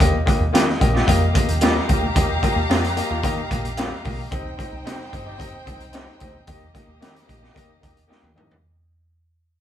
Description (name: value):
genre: uptempo 1960s-style soul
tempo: 111 BPM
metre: 4/4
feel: straight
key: Eb major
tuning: A4 = 440 Hz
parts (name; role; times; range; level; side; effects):
- clear grand piano; accompaniment; 0.0-8.5 s; Bb3 to Bb5; -26 LUFS; left 3 dB; none
- vintage muted picked electric bass; bass; 0.0-8.6 s; G1 to Eb3; -25 LUFS; equal; tube saturation
- raw garage drum kit; drums; 0.0-8.6 s; hi-hat, kick drum, snare drum, toms; -21 LUFS; equal; none
- electric guitar through a small old amp; stabs; 0.5-8.2 s; Bb3 to G4; -27 LUFS; right 2 dB; none
- warm studio violin section; second line; 1.1-8.6 s; Bb3 to Bb5; -29 LUFS; left 1 dB; none
room: moderate stone room reverb, RT60 1.2 s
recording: band playing live in one room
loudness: -18 LUFS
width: side -10 dB against mid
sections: 0.0-8.6 A section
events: fade-out 0.0-8.6; grand piano fill 7.6-8.6; drum fill 8.1-8.6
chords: 0.0 Ebadd9; 4.3 Cm; 6.5 Eb